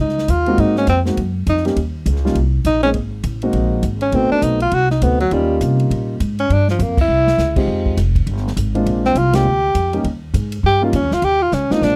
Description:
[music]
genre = jazz, small-group swing and bop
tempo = 203 BPM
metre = 4/4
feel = swing 61% on 8ths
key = Eb mixolydian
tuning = A4 = 440 Hz
[part]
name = breathy tenor saxophone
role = melody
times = 0.0-12.0 s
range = F3 to G4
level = -19 LUFS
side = equal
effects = none
[part]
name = upright bass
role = bass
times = 0.0-12.0 s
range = F1 to C3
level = -21 LUFS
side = equal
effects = none
[part]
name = swinging big-band drum kit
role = drums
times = 0.1-11.9 s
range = crash cymbal, hi-hat, kick drum, ride cymbal, snare drum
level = -26 LUFS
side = equal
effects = none
[part]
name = dark concert grand piano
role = accompaniment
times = 0.5-12.0 s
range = G3 to Ab4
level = -22 LUFS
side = equal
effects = none
[sound]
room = little or no reverb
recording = dry, close 1970s-style studio recording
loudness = -17 LUFS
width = mono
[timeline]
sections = 0.0-12.0 A section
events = band accent 6.9, 9.3; drum fill 7.1, 11.5-12.0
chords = 0.0 Eb7(no3); 0.6 Ab7; 1.8 Eb7(no3); 2.9 Ab7; 4.1 Adim7; 5.3 Eb7; 6.5 Bb6; 7.1 C; 7.7 Fm7; 8.9 Bb7; 10.0 Eb7

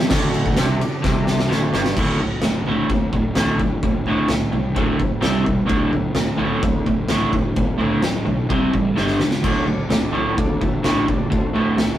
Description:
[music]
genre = garage rock duo or trio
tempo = 128 BPM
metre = 4/4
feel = straight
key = D mixolydian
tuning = A4 = 440 Hz
[part]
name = overdriven combo organ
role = sustained chords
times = 0.0-1.9, 9.4-12.0 s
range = F#4 to E5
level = -31 LUFS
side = left 2 dB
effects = none
[part]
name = crunchy overdriven guitar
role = riff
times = 0.0-12.0 s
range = D2 to C5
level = -20 LUFS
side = right 1 dB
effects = none
[part]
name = fuzz fingered electric bass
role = bass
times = 0.0-12.0 s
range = D1 to D2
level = -26 LUFS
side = equal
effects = overdrive, tube saturation
[part]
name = oversized low-tuned drum kit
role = drums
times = 0.1-11.9 s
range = crash cymbal, kick drum, ride cymbal, snare drum, toms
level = -21 LUFS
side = equal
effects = none
[sound]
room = moderate studio reverb, RT60 0.5 s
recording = rough rehearsal-room recording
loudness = -17 LUFS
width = side -12 dB against mid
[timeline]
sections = 0.1-2.0 A section; 2.0-12.0 B section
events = drum fill 1.0-2.0, 9.0-9.4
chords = 0.1 D; 2.0 D5; 5.2 C5; 5.7 D5; 8.5 C5; 9.0 G5; 9.4 D

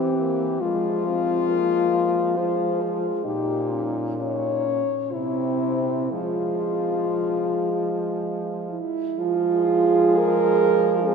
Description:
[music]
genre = classical, lyrical piece for horn quartet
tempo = 57-71 BPM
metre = 3/4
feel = rubato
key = F minor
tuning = A4 = 439 Hz
[part]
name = warm French horn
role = melody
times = 0.0-11.1 s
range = C4 to Db5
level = -25 LUFS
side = left 7 dB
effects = none
[part]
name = dark French horn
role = second line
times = 0.0-11.1 s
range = Ab3 to Bb4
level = -25 LUFS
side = right 6 dB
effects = none
[part]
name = mellow French horn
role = accompaniment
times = 0.0-11.1 s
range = Ab3 to Eb4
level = -29 LUFS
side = right 1 dB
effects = none
[part]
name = clear French horn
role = bass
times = 0.0-11.1 s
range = Bb2 to F3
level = -29 LUFS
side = right 1 dB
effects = none
[sound]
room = wet cathedral reverb, RT60 5.3 s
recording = minimal, uncompressed stereo recording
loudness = -20 LUFS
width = side -6 dB against mid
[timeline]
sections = 0.0-9.2 A section; 9.2-11.1 A section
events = none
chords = 0.0 C7/E; 0.6 Fm; 3.3 Bbmadd11; 5.1 C; 6.1 Fm

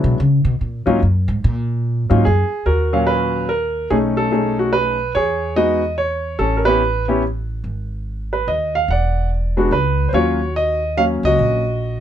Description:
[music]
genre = jazz piano trio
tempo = 144 BPM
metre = 3/4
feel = swing 65% on 8ths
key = Eb minor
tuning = A4 = 440 Hz
[part]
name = warm baby grand piano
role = melody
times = 0.0-12.0 s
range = Bb2 to F#5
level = -17 LUFS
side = equal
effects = none
[part]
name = upright bass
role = bass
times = 0.0-12.0 s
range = E1 to Db3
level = -20 LUFS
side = equal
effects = none
[sound]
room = little or no reverb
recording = dark, warm production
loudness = -16 LUFS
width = side -10 dB against mid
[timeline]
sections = 0.0-2.7 A section; 2.7-12.0 B section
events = upright bass solo 0.0-2.7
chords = 0.2 Ebm (rootless); 2.7 Ebm7; 3.9 B13; 5.2 Emaj7; 6.4 A9; 7.6 Ab5; 8.9 E7sus2; 10.1 Ebm7

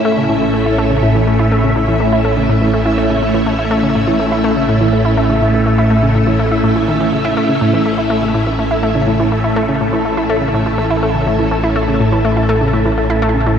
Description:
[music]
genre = ambient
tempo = 123 BPM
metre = 4/4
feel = straight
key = A major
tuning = A4 = 440 Hz
[part]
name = phased string machine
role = sustained chords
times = 0.0-13.6 s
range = A2 to E5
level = -15 LUFS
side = equal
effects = ensemble chorus, phaser
[part]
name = analog pluck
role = riff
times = 0.0-13.6 s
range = A2 to E4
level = -17 LUFS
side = equal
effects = chorus, tape echo
[part]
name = analog drone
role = bass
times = 0.3-13.6 s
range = A1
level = -22 LUFS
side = equal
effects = chorus
[part]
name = wind-like tuned noise texture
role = texture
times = 0.9-13.6 s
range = E4 to E5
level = -23 LUFS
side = equal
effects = built-in reverb, lush chorus
[sound]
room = wet huge ambient reverb, RT60 7.8 s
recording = dreamy mix soaked in reverb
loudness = -12 LUFS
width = side -8 dB against mid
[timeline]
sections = 0.0-13.6 A section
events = none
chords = 0.0 A

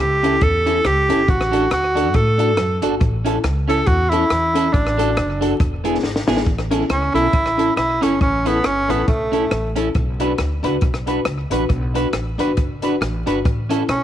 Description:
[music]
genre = ska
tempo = 138 BPM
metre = 4/4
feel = swing 57% on 8ths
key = A mixolydian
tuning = A4 = 440 Hz
[part]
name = breathy tenor saxophone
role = melody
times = 0.0-9.7, 13.9-14.0 s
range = A3 to A4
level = -19 LUFS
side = right 1 dB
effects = none
[part]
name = upright bass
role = bass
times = 0.0-14.0 s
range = E1 to A2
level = -23 LUFS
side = equal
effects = none
[part]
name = clean electric guitar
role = accompaniment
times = 0.2-13.8 s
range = B3 to B4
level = -24 LUFS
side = right 8 dB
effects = tape echo
[part]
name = dark upright piano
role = stabs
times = 0.2-13.9 s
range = B3 to B4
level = -24 LUFS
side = left 9 dB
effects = none
[part]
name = compact cocktail drum kit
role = drums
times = 0.2-14.0 s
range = hi-hat, kick drum, rim click, snare drum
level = -22 LUFS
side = equal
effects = tape echo
[sound]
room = light reverb, small room ambience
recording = 1960s-style stereo with parts hard left and right, vinyl crackle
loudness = -16 LUFS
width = side -11 dB against mid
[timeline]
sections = 0.0-6.5 A section; 6.5-14.0 B section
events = drum fill 6.0-6.5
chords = 0.0 A; 1.3 D/A; 3.0 A; 4.7 D/A; 5.6 E; 6.5 A; 9.9 Bm; 13.5 A

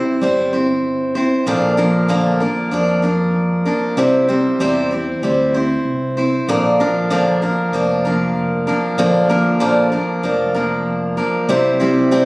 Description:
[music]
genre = honky-tonk and classic country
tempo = 96 BPM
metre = 4/4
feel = straight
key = unclear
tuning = A4 = 440 Hz
[part]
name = picked steel-string acoustic guitar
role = accompaniment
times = 0.0-12.3 s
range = Bb2 to C5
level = -14 LUFS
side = equal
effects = none
[part]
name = mellow fretless electric bass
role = bass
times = 0.2-12.3 s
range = F1 to F2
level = -24 LUFS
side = equal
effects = none
[sound]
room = wet large studio reverb, RT60 1.3 s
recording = recorded on a phone in the room, studio reverb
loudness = -14 LUFS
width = side -24 dB against mid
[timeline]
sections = 0.0-12.3 A section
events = none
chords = 0.0 C; 1.5 Bb; 4.0 C; 6.5 Bb; 11.5 C

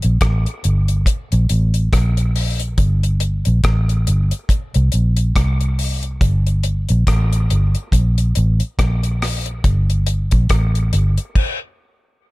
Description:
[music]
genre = dub reggae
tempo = 70 BPM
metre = 4/4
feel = swing 58% on 16ths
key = unclear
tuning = A4 = 440 Hz
[part]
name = vintage muted fingered electric bass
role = bass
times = 0.0-11.2 s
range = G1 to C2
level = -15 LUFS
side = equal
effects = none
[part]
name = deep reggae drum kit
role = drums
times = 0.0-11.6 s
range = crash cymbal, hi-hat, kick drum, rim click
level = -19 LUFS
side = equal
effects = none
[sound]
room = little or no reverb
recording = none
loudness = -15 LUFS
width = side -20 dB against mid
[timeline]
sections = 0.0-12.3 A section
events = stop 11.4-12.3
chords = none

